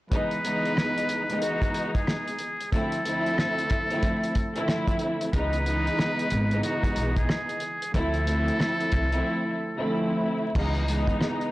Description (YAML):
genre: hip hop, boom-bap hip-hop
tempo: 92 BPM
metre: 4/4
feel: swing 61% on 16ths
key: C# minor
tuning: A4 = 440 Hz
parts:
  - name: trumpet with metal mute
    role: melody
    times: 0.1-10.1 s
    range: F#4 to B4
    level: -30 LUFS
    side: equal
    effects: high-pass filter, low-pass filter, digital delay
  - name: dark studio string section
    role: accompaniment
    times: 0.1-11.5 s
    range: C#2 to E4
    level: -27 LUFS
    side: equal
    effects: high-pass filter, low-pass filter
  - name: cloth-damped thuddy drum kit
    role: drums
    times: 0.1-11.5 s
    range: crash cymbal, hi-hat, kick drum, rim click, snare drum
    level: -28 LUFS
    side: equal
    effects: none
  - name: upright bass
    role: bass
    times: 5.3-11.1 s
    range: G#1 to D2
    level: -27 LUFS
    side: equal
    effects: none
room: light reverb, studio ambience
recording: blown-out, overdriven recording, vinyl crackle, overdrive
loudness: -24 LUFS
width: side -18 dB against mid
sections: 0.1-10.6 A section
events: break 9.2-10.6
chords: 0.1 C#m7; 2.7 Dm7; 5.3 C#m7; 7.9 Dm7; 10.6 C#m7